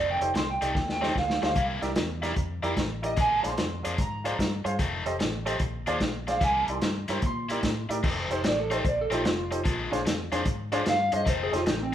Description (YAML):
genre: electric blues shuffle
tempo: 148 BPM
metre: 4/4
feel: swing 66% on 8ths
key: F mixolydian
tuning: A4 = 444 Hz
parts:
  - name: electric slide guitar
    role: melody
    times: 0.0-11.9 s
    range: C4 to C6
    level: -28 LUFS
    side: right 1 dB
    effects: none
  - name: cranked stack guitar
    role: riff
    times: 0.0-11.7 s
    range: F2 to E4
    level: -35 LUFS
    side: left 3 dB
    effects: overdrive
  - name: fingered electric bass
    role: bass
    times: 0.0-11.9 s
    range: F1 to Bb2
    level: -34 LUFS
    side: equal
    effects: none
  - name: bright upright piano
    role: accompaniment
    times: 0.2-11.6 s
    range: D4 to F5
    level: -32 LUFS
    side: right 1 dB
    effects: none
  - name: vintage drum kit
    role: drums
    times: 0.2-11.8 s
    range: crash cymbal, hi-hat, kick drum, snare drum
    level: -29 LUFS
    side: equal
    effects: none
room: moderate large studio reverb, RT60 0.9 s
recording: band playing live in one room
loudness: -25 LUFS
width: side -10 dB against mid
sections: 0.0-8.0 A section; 8.0-11.9 B section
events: drum fill 0.8-1.6; electric slide guitar solo 8.0-11.9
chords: 0.0 F7; 1.6 C7; 3.2 Bb7; 4.8 F7; 5.6 Bb7; 6.4 C7; 8.0 F7; 9.7 Bb7; 11.3 F7